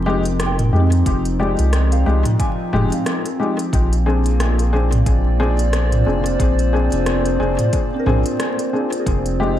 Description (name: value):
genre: ambient dub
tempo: 90 BPM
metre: 4/4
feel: swing 58% on 16ths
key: unclear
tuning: A4 = 441 Hz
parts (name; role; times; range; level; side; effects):
- warbly tape-like pad; sustained chords; 0.0-9.6 s; F3 to D5; -23 LUFS; equal; chorus, built-in reverb, vintage 12-bit sampler grit
- soft synth bell; arpeggios; 0.0-9.6 s; C4 to C6; -28 LUFS; equal; chorus, phaser, dub echo
- soft dub sub bass; bass; 0.0-9.6 s; F1 to F2; -18 LUFS; equal; tube saturation
- dark upright piano; stabs; 0.1-9.6 s; Ab3 to Ab4; -23 LUFS; left 3 dB; dub echo
- organic electronic drum kit; drums; 0.3-9.4 s; hi-hat, rim click, toms; -24 LUFS; equal; overdrive, dub echo
- electronic kick drum; drums; 1.1-9.2 s; none; -21 LUFS; equal; none
room: light reverb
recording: vinyl crackle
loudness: -15 LUFS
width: side -12 dB against mid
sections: 0.0-9.6 A section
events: none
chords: 0.0 Fm9; 3.7 Bb7; 9.1 Fm9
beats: 0.40 | 1.06 1.73 2.40 3.06 | 3.73 4.40 5.06 5.73 | 6.40 7.06 7.73 8.40 | 9.06